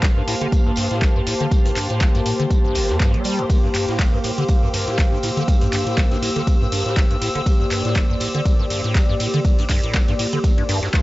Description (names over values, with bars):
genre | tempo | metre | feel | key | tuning
acid house | 121 BPM | 4/4 | swing 56% on 16ths | G dorian | A4 = 439 Hz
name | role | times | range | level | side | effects
warm analog pad | sustained chords | 0.0-11.0 s | Bb3 to A5 | -26 LUFS | equal | chorus, sidechain pumping
liquid acid bass | riff | 0.0-11.0 s | G1 to G3 | -23 LUFS | equal | phaser, overdrive, analog chorus, tape echo
booming analog drum machine | drums | 0.0-11.0 s | handclaps, hi-hat, ride cymbal | -27 LUFS | equal | studio reverb
electronic kick drum | drums | 0.0-11.0 s | none | -18 LUFS | equal | overdrive, studio reverb
warm soul drum kit | drums | 0.0-11.0 s | hi-hat, snare drum, tambourine | -34 LUFS | equal | none
muted chamber string section | texture | 0.0-11.0 s | G4 to E6 | -28 LUFS | left 2 dB | sidechain pumping
room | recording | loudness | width
small room ambience | dry, gritty hardware recording, cassette tape, nothing above 7.8 kHz | -16 LUFS | side -18 dB against mid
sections
0.0-11.0 A section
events
none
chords
0.0 Gm7